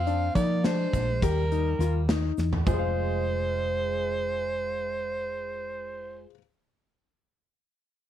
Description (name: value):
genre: progressive instrumental, band music in an uneven meter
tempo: 208 BPM (eighths)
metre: 5/8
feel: straight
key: F dorian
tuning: A4 = 438 Hz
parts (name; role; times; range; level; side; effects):
- breathy soprano saxophone; melody; 0.0-6.2 s; Bb4 to F5; -30 LUFS; right 2 dB; none
- direct-recorded clean electric guitar; second line; 0.0-6.3 s; G3 to C4; -37 LUFS; right 18 dB; analog chorus
- hollow-body short-scale fingered electric bass; bass; 0.0-6.2 s; F1 to F3; -29 LUFS; equal; none
- warm concert grand piano; arpeggios; 0.1-6.4 s; D4 to F5; -34 LUFS; left 19 dB; none
- gated 80s drum kit; drums; 0.1-2.8 s; hi-hat, kick drum, snare drum, toms; -29 LUFS; equal; none
- egg shaker; percussion; 0.1-2.9 s; none; -55 LUFS; right 22 dB; none
room: little or no reverb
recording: none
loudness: -25 LUFS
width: side -11 dB against mid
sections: 0.0-2.7 A section; 2.7-5.6 B section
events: drum fill 2.4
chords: 0.0 Fm; 1.2 Eb; 2.7 Fm